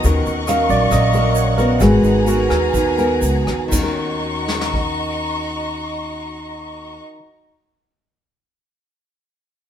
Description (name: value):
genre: bossa nova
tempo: 118-139 BPM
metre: 4/4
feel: straight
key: Eb minor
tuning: A4 = 440 Hz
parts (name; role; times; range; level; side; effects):
- barky tine electric piano; accompaniment; 0.0-3.7 s; Gb3 to F5; -19 LUFS; right 4 dB; none
- nylon-string guitar; accompaniment; 0.0-7.3 s; Bb2 to Bb4; -21 LUFS; left 2 dB; none
- warm symphonic string section; sustained chords; 0.0-7.0 s; Gb4 to Db6; -24 LUFS; left 1 dB; none
- upright bass; bass; 0.0-7.0 s; Ab1 to Eb2; -21 LUFS; equal; none
- vintage brush drum kit; drums; 0.0-4.9 s; crash cymbal, hi-hat, kick drum, rim click, snare drum; -25 LUFS; equal; none
- tube shaker; percussion; 0.0-3.8 s; none; -32 LUFS; right 5 dB; none
room: moderate stone room reverb, RT60 1.0 s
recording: band playing live in one room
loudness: -15 LUFS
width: side -10 dB against mid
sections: 0.0-3.7 A section; 3.7-7.8 B section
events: tine electric piano solo 0.0-3.7; slowing down 0.0-3.7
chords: 0.0 Ebm7; 1.8 Abm9; 3.7 Ebm7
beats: | 0.04 0.47 0.91 1.35 | 1.80 2.26 2.73 3.22 | 3.72 4.23 4.74 5.24 | 5.75 6.26 6.77 7.28